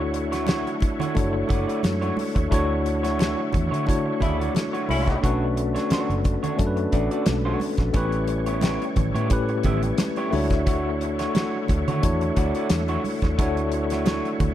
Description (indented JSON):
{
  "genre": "lush 1970s-style soul",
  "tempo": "88 BPM",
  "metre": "4/4",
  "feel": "swing 54% on 16ths",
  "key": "D major",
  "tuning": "A4 = 440 Hz",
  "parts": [
    { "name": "bright tine electric piano", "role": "accompaniment", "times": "0.0-14.5 s", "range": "A3 to C#5", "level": "-26 LUFS", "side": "left 2 dB", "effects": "fast stereo tremolo" },
    { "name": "overdriven tonewheel organ", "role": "sustained chords", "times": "0.0-14.5 s", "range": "D3 to C#5", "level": "-34 LUFS", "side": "equal", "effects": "slow rotary speaker, chorus vibrato" },
    { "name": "vintage muted fingered electric bass", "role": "bass", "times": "0.0-14.5 s", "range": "F#1 to D3", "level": "-27 LUFS", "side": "equal", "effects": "none" },
    { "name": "electric guitar through a small old amp", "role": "riff", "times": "0.1-14.4 s", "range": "A3 to E5", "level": "-31 LUFS", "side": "right 3 dB", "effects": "none" },
    { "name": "damped 70s drum kit", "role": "drums", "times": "0.1-14.5 s", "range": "hi-hat, kick drum, snare drum", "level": "-25 LUFS", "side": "equal", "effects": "none" },
    { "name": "congas", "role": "percussion", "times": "0.5-14.5 s", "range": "none", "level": "-33 LUFS", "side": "right 7 dB", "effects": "none" },
    { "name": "mellow horn section", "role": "stabs", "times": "4.2-5.2 s", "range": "C#3 to E4", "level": "-30 LUFS", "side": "left 2 dB", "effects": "slapback echo" }
  ],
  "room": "light reverb, small room reverb",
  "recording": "dark, warm production",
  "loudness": "-21 LUFS",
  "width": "side -12 dB against mid",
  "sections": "0.0-14.5 A section",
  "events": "band accent 2.5-5.2",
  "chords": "0.0 Dmaj9; 5.2 Bm9; 8.0 A9; 10.3 Dmaj9"
}